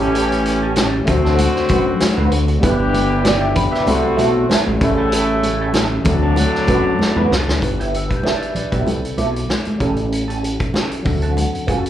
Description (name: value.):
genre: lush 1970s-style soul.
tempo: 96 BPM.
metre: 4/4.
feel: swing 54% on 16ths.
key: G major.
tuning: A4 = 440 Hz.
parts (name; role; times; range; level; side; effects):
tine electric piano; accompaniment; 0.0-11.9 s; F#3 to G5; -21 LUFS; left 2 dB; overdrive, slapback echo.
electric guitar at the edge of break-up; riff; 0.0-11.9 s; B3 to D5; -25 LUFS; right 5 dB; wah, slapback echo.
warm horn section; stabs; 0.0-7.3 s; A2 to G4; -22 LUFS; left 1 dB; tape echo, slapback echo.
fat analog bass; bass; 0.0-11.9 s; G1 to F#2; -19 LUFS; equal; none.
vintage drum kit; drums; 0.0-11.9 s; hi-hat, kick drum, snare drum; -22 LUFS; equal; none.
large celesta; texture; 0.0-11.9 s; F#5 to A6; -30 LUFS; left 1 dB; none.
congas; percussion; 0.8-11.8 s; none; -25 LUFS; right 3 dB; slapback echo.
room: small room ambience.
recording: live gig heard through the venue's PA, club reverb.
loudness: -15 LUFS.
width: side -11 dB against mid.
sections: 0.0-7.6 A section; 7.6-11.9 B section.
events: drum fill 7.0-7.6.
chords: 0.0 A7; 1.1 D7; 2.6 G6; 3.9 C6; 4.8 A7; 6.1 D7; 7.6 G6; 8.9 C6; 9.8 A7; 11.1 D7.